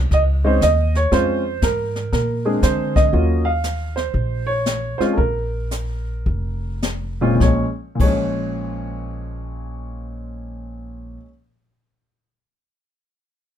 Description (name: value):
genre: jazz piano trio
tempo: 101-119 BPM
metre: 4/4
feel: swing 66% on 8ths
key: Bb minor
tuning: A4 = 439 Hz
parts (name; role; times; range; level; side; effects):
- upright bass; bass; 0.0-11.2 s; F1 to D3; -22 LUFS; equal; none
- warm baby grand piano; melody; 0.1-11.3 s; Bb2 to F5; -21 LUFS; right 1 dB; none
- jazz brush drum kit; drums; 0.1-8.2 s; brushed snare drum, crash cymbal, hi-hat, kick drum, snare drum; -22 LUFS; left 2 dB; none
room: light reverb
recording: minimal, uncompressed stereo recording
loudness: -17 LUFS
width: side -10 dB against mid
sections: 0.0-3.1 A section; 3.1-7.4 B section; 7.4-12.1 C section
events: slowing down 3.1-7.4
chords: 0.0 Bbm7; 2.1 Bb7; 3.1 Eb7sus2; 5.2 Bb5; 7.4 Bbm7